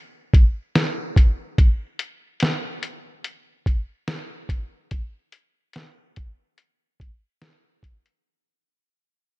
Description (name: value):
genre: indie pop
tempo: 72 BPM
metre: 4/4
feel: swing 55% on 16ths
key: none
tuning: none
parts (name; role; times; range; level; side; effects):
- lo-fi sampler-style drum kit; drums; 0.3-8.2 s; hi-hat, kick drum, snare drum; -18 LUFS; equal; none
room: little or no reverb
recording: dark, warm production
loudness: -20 LUFS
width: side -20 dB against mid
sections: 0.0-8.2 A section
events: fade-out 0.0-8.2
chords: none